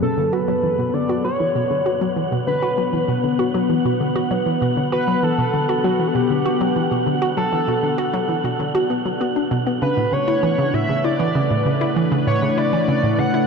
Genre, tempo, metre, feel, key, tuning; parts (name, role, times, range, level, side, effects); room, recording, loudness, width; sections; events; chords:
ambient, sequencer-driven space music; 98 BPM; 4/4; straight; B minor; A4 = 441 Hz
pulse-width lead; melody; 0.0-13.5 s; F#4 to F#5; -22 LUFS; equal; chorus, cassette tape, ping-pong delay
phased analog pad; sustained chords; 0.0-13.5 s; A3 to F#5; -23 LUFS; left 2 dB; phaser, chorus
hollow square pluck; riff; 0.0-13.5 s; A2 to F#4; -21 LUFS; right 1 dB; chorus, phaser, cassette tape, ping-pong delay
wind-like tuned noise texture; texture; 0.9-13.5 s; F#5; -30 LUFS; right 4 dB; built-in reverb
wet huge ambient reverb, RT60 8.9 s; dark, warm production; -17 LUFS; side -5 dB against mid
0.0-13.5 A section
0.0 Bm; 9.8 Asus4